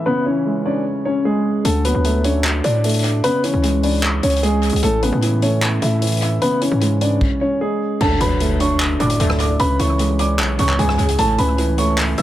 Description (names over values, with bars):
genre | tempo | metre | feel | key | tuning
hip hop, trap | 151 BPM | 4/4 | half-time | C# phrygian | A4 = 440 Hz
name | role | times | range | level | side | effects
dark grand piano | melody | 0.0-12.2 s | G#3 to E6 | -20 LUFS | left 1 dB | low-pass filter, tape echo
dark baby grand piano | accompaniment | 0.0-12.2 s | A2 to D4 | -21 LUFS | right 2 dB | low-pass filter, tape echo
hard-hitting 808-style bass | bass | 1.6-12.2 s | A1 to A2 | -19 LUFS | equal | none
vintage drum kit | drums | 1.6-12.2 s | crash cymbal, handclaps, hi-hat, kick drum, rim click | -23 LUFS | left 1 dB | tape echo
impact | sound effects | 8.0-9.6 s | none | -27 LUFS | equal | none
resonant sweep polysynth | stabs | 9.0-12.2 s | E2 to D3 | -26 LUFS | left 1 dB | chorus, tape echo
room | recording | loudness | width
light reverb, studio reverb | echo-heavy mix | -15 LUFS | side -13 dB against mid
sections
0.0-8.0 A section; 8.0-12.2 B section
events
stop 7.2-8.0; impact 8.0-9.6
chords
0.1 C#m; 1.6 D; 3.2 C#m; 4.8 A; 6.4 C#m; 8.0 D; 9.6 C#m; 11.2 A